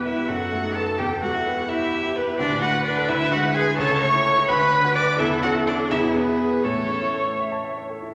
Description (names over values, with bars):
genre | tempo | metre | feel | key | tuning
quick classical-period movement for piano quartet | 85 BPM (dotted quarters) | 6/8 | rubato | A major | A4 = 439 Hz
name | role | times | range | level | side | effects
warm violin | melody | 0.0-7.4 s | A4 to D6 | -27 LUFS | equal | none
warm cello | second line | 0.0-7.4 s | A3 to D5 | -28 LUFS | equal | none
warm grand piano | accompaniment | 0.0-8.1 s | C#2 to B5 | -28 LUFS | equal | none
warm viola | accompaniment | 0.0-7.8 s | G4 to C#5 | -28 LUFS | equal | none
room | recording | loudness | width
wet scoring stage reverb, RT60 1.6 s | none | -22 LUFS | mono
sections
0.0-8.1 A section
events
none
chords
0.3 B7/F#; 1.0 Em; 2.4 Bm7/D; 3.1 E7/D; 3.8 A/C#; 4.5 Bm/D; 5.2 A/E; 5.9 E; 6.6 A